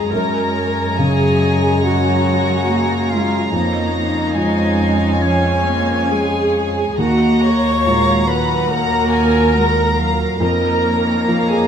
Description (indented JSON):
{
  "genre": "cinematic, emotional film score for orchestra",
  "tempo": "70 BPM",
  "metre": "4/4",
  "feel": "rubato",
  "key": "Eb minor",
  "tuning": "A4 = 439 Hz",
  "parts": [
    { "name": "warm studio violin section", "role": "melody", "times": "0.0-11.7 s", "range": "Ab5 to Bb5", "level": "-25 LUFS", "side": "equal", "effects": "none" },
    { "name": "rich studio violin section", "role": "second line", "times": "0.0-11.7 s", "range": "Db5 to Bb5", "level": "-27 LUFS", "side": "left 2 dB", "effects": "none" },
    { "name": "dark studio viola section", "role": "accompaniment", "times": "0.0-11.7 s", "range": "Db4 to Db5", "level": "-20 LUFS", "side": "equal", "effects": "none" },
    { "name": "felt-muted upright piano", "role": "accompaniment", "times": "0.0-11.7 s", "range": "Eb2 to F3", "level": "-23 LUFS", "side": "equal", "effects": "none" },
    { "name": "clear chamber double bass section", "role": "bass", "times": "0.0-11.7 s", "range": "Eb2 to Gb2", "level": "-22 LUFS", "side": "right 2 dB", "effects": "none" },
    { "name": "dark studio cello section", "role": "bass", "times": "0.0-11.7 s", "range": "F3 to Bb3", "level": "-20 LUFS", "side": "right 1 dB", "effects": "none" },
    { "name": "bright silver concert flute", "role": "second line", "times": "0.1-11.7 s", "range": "Db5 to Db6", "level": "-25 LUFS", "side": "left 2 dB", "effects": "none" },
    { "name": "warm French horn section", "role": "sustained chords", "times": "0.1-11.7 s", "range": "Gb3 to Bb4", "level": "-24 LUFS", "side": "left 4 dB", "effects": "none" }
  ],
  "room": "moderate scoring stage reverb, RT60 2.0 s",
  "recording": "close, detailed microphones",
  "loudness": "-14 LUFS",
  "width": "side -8 dB against mid",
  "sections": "0.0-11.7 A section",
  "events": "none",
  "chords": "0.1 Gbadd9; 3.5 Db/F; 7.0 Ebmadd9; 10.4 Bbsus4/F",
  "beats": "| 0.12 0.98 1.83 2.68 | 3.53 4.37 5.21 6.10 | 6.98 7.85 8.69 9.54 | 10.41 11.28"
}